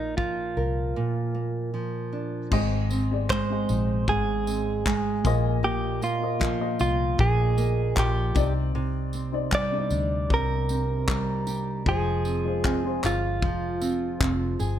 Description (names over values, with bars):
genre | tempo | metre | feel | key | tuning
acoustic pop | 77 BPM | 4/4 | straight | unclear | A4 = 440 Hz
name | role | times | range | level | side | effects
direct-recorded clean electric guitar | melody | 0.0-14.6 s | Eb4 to D5 | -29 LUFS | right 3 dB | none
nylon-string guitar | accompaniment | 0.0-14.8 s | Ab2 to Bb4 | -28 LUFS | right 2 dB | none
vintage muted fingered electric bass | bass | 0.0-14.8 s | F1 to D2 | -28 LUFS | left 1 dB | none
modern studio drum kit | drums | 0.2-14.8 s | crash cymbal, handclaps, kick drum, tambourine | -28 LUFS | left 1 dB | none
dark upright piano | accompaniment | 2.5-14.8 s | Ab3 to Eb5 | -33 LUFS | left 9 dB | none
room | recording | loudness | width
light reverb | none | -23 LUFS | side -10 dB against mid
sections
0.0-2.5 A section; 2.5-14.8 B section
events
break 1.0-2.5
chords
0.0 Bb; 2.5 Ab; 5.2 Bbsus4; 8.4 Cmadd9; 11.9 Fm